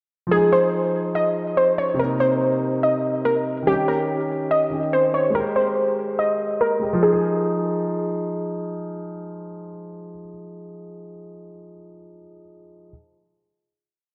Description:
hip hop; 143 BPM; 4/4; half-time; F minor; A4 = 440 Hz
warbly dusty pluck; melody; 0.3-8.2 s; G4 to Eb5; -23 LUFS; equal; chorus, delay
dark baby grand piano; accompaniment; 0.3-12.9 s; C3 to Eb5; -27 LUFS; equal
wet plate reverb, RT60 3.2 s; dreamy mix soaked in reverb, low-pass filter; -21 LUFS; mono
0.3-7.0 breakdown; 7.0-10.4 final chord
filter sweep 0.3-7.0
0.3 Fm7; 2.0 Cm7; 3.7 Eb7; 5.3 Abmaj7; 7.0 Fm7
| 0.32 0.73 1.15 1.57 | 1.99 2.41 2.83 3.25 | 3.67 4.09 4.51 4.93 | 5.35 5.77 6.19 6.61 | 7.03 7.45 7.87 8.29 | 8.71 9.13 9.55 9.97

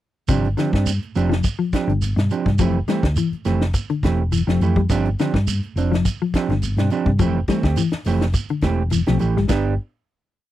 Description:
afrobeat; 104 BPM; 4/4; swing 54% on 16ths; G mixolydian; A4 = 444 Hz
mellow electric guitar; arpeggios; 0.3-9.7 s; G2 to G3; -23 LUFS; left 6 dB; tremolo
mellow electric guitar; stabs; 0.3-9.7 s; E3 to G4; -22 LUFS; right 6 dB
hollow-body short-scale fingered electric bass; bass; 0.3-9.8 s; E1 to G2; -20 LUFS; equal
tight funk drum kit; drums; 0.3-9.6 s; hi-hat, kick drum, ride cymbal, snare drum; -23 LUFS; left 1 dB
shekere; percussion; 0.3-9.6 s; -28 LUFS; right 3 dB
little or no reverb; dry, close 1970s-style studio recording; -18 LUFS; side -13 dB against mid
0.3-9.5 groove; 9.5-10.5 final chord
0.3 G7sus4; 2.6 Fmaj9; 4.9 G7sus4; 7.2 Fmaj9; 9.5 G
| 0.29 0.87 1.44 2.02 | 2.60 3.17 3.75 4.32 | 4.90 5.47 6.05 6.63 | 7.20 7.78 8.35 8.93 | 9.50

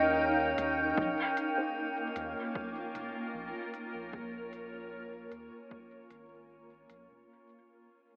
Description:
ambient dub; 76 BPM; 4/4; swing 53% on 16ths; Bb dorian; A4 = 441 Hz
granular cloud pad; sustained chords; 0.0-7.3 s; Bb3 to G5; -33 LUFS; equal; built-in reverb
felt-muted upright piano; arpeggios; 0.0-7.6 s; Bb3 to Eb5; -38 LUFS; equal; low-pass filter, dub echo
round analog bass; bass; 0.0-7.3 s; F1 to Eb2; -47 LUFS; equal
drifting glass-harmonics texture; texture; 0.0-7.3 s; Db4 to Db5; -37 LUFS; equal; chorus, built-in reverb
electronic hi-hat; drums; 0.6-7.1 s; -46 LUFS; equal; dub echo
electronic kick drum; drums; 1.0-5.9 s; -38 LUFS; equal; overdrive
filtered dub chord stab; stabs; 1.6-4.9 s; Db4 to C5; -48 LUFS; equal
moderate huge ambient reverb, RT60 8.6 s; vinyl crackle, AM radio sound; -31 LUFS; side -38 dB against mid
0.0-7.3 A section
fade-out 0.0-7.3; filter sweep on felt piano 0.0-7.3
0.0 Eb; 1.0 Bbm7
0.18 | 0.97 1.76 2.55 3.34 | 4.13 4.92 5.71 6.50

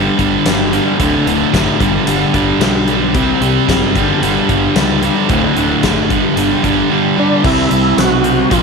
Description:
classic rock; 112 BPM; 4/4; straight; A4 = 440 Hz
cranked stack guitar; riff; 0.0-8.6 s; D2 to C4; -15 LUFS; right 12 dB; overdrive
crunchy overdriven guitar; riff; 0.0-8.6 s; D2 to C4; -16 LUFS; left 10 dB
growling fingered electric bass; bass; 0.0-8.6 s; D1 to C#2; -21 LUFS; right 1 dB; overdrive
huge arena drum kit; drums; 0.2-8.6 s; crash cymbal, hi-hat, kick drum, snare drum, tambourine; -18 LUFS; left 3 dB
overdriven tonewheel organ; melody; 7.2-8.6 s; D4 to F#4; -15 LUFS; equal; slow rotary speaker, chorus vibrato
moderate echo chamber reverb, RT60 2.2 s; 1960s-style stereo with parts hard left and right; -11 LUFS; side -4 dB against mid
0.0-7.4 A section; 7.4-8.6 B section
0.0 G5; 1.0 D5; 1.8 G; 3.1 C5; 4.0 G5; 5.3 D5; 6.1 G5; 7.4 C
0.46 | 1.00 1.53 2.07 2.61 | 3.15 3.69 4.23 4.76 | 5.30 5.84 6.37 6.91 | 7.45 7.98 8.52

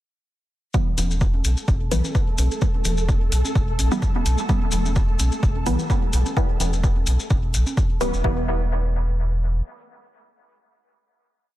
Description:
dub techno; 128 BPM; 4/4; swing 54% on 16ths; E minor; A4 = 435 Hz
filtered dub chord stab; stabs; 0.7-11.6 s; E3 to B3; -27 LUFS; equal; phaser, sidechain pumping, dub echo
electronic kick drum; drums; 0.7-8.3 s; -21 LUFS; equal
maracas; percussion; 0.7-8.2 s; -32 LUFS; left 4 dB
flickering grainy texture; texture; 1.1-8.3 s; A3 to A4; -32 LUFS; equal; built-in reverb, sidechain pumping
pure sine sub bass; bass; 1.0-9.6 s; D1 to B1; -22 LUFS; equal; sidechain pumping
electronic hi-hat; drums; 1.0-8.1 s; -31 LUFS; equal
congas; percussion; 1.0-8.1 s; -34 LUFS; right 1 dB; overdrive, sidechain pumping on perc, dub echo
digital ambience; dense, heavily limited modern master; -19 LUFS; side -15 dB against mid
0.7-8.2 groove; 8.2-11.6 final chord
0.7 Em
| 0.74 1.21 1.68 2.15 | 2.62 3.09 3.56 4.02 | 4.49 4.96 5.43 5.90 | 6.37 6.84 7.30 7.77 | 8.24 8.71 9.18 9.65 | 10.12 10.59 11.05 11.52

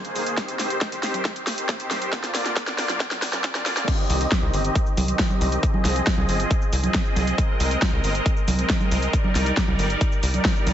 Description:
uplifting trance; 137 BPM; 4/4; straight; C minor; A4 = 440 Hz
filtered supersaw swell; sustained chords; 0.0-10.7 s; D3 to Eb5; -26 LUFS; equal; sidechain pumping
big-room dance drum kit; drums; 0.0-10.7 s; congas, crash cymbal, hi-hat, shaker, snare drum; -26 LUFS; right 1 dB; overdrive
tight sequencer bass; bass; 0.2-10.7 s; G1 to C2; -25 LUFS; equal; tube saturation, sidechain pumping
electronic kick drum; drums; 0.4-10.5 s; -23 LUFS; equal; overdrive
light reverb; high-pass filter, nothing above 7.9 kHz; -20 LUFS; side -10 dB against mid
0.0-3.9 A section; 3.9-10.7 B section
build-up 0.0-3.9; drum fill 0.0-3.9; drop 3.9-10.7
0.4 Cm; 2.1 Bb; 3.9 Cm; 5.6 Fm7; 7.4 Abadd9; 9.1 Ebmaj7
| 0.38 0.81 1.25 1.69 | 2.13 2.56 3.00 3.44 | 3.88 4.32 4.75 5.19 | 5.63 6.07 6.51 6.94 | 7.38 7.82 8.26 8.70 | 9.13 9.57 10.01 10.45

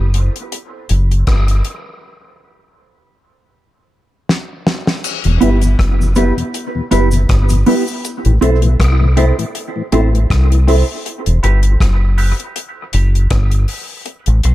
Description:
dub reggae; 80 BPM; 4/4; swing 55% on 16ths; E minor; A4 = 437 Hz
deep dub fingered electric bass; bass; 0.0-14.5 s; E1 to C2; -12 LUFS; equal
damped 70s drum kit; drums; 0.1-14.5 s; crash cymbal, hi-hat, kick drum, rim click, snare drum; -20 LUFS; left 1 dB
cabasa; percussion; 5.0-8.2 s; -30 LUFS; right 1 dB; high-pass filter on perc
mellow tonewheel organ; accompaniment; 5.3-10.8 s; E2 to E4; -21 LUFS; left 5 dB; chorus vibrato, slow rotary speaker, high-pass filter, low-pass filter
mellow electric guitar; accompaniment; 5.4-14.5 s; B3 to C5; -19 LUFS; right 3 dB; phaser, high-pass filter, low-pass filter, dub echo
light reverb, studio ambience; echo-heavy mix; -12 LUFS; side -15 dB against mid
0.0-5.0 A section; 5.0-14.5 B section
break 0.0-5.0; drum fill 4.3-5.0; part muted 8.0-14.5; filter sweep 8.0-14.5
0.0 N.C.; 5.0 Em; 8.0 Am; 11.1 Em
0.52 1.27 | 2.02 2.78 3.53 4.28 | 5.04 5.79 6.54 7.29 | 8.04 8.80 9.55 10.30 | 11.05 11.80 12.56 13.31 | 14.06

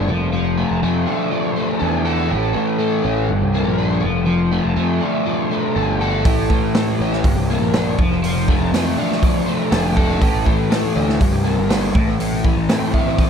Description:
psychedelic rock; 122 BPM; 4/4; straight; D minor; A4 = 439 Hz
crunchy overdriven guitar; riff; 0.0-13.3 s; G2 to A4; -18 LUFS; left 1 dB; flanger, tape echo
fuzz picked electric bass; bass; 0.0-12.9 s; F1 to A2; -21 LUFS; equal; overdrive
vintage drum kit; drums; 6.2-13.3 s; hi-hat, kick drum, snare drum; -19 LUFS; right 1 dB; tape echo
congas; percussion; 6.4-13.0 s; -35 LUFS; right 2 dB
light reverb, studio reverb; echo-heavy mix; -16 LUFS; side -7 dB against mid
0.0-13.3 A section
0.1 Dm/F; 2.3 A; 3.3 Gm; 4.0 Dm/F; 6.3 A; 7.2 Gm; 8.0 Dm/F; 10.2 A; 11.2 Gm; 11.9 Am
| 0.33 0.82 1.32 1.81 | 2.30 2.79 3.29 3.78 | 4.28 4.77 5.26 5.76 | 6.25 6.75 7.24 7.73 | 8.23 8.72 9.22 9.71 | 10.21 10.70 11.20 11.69 | 12.19 12.69 13.18

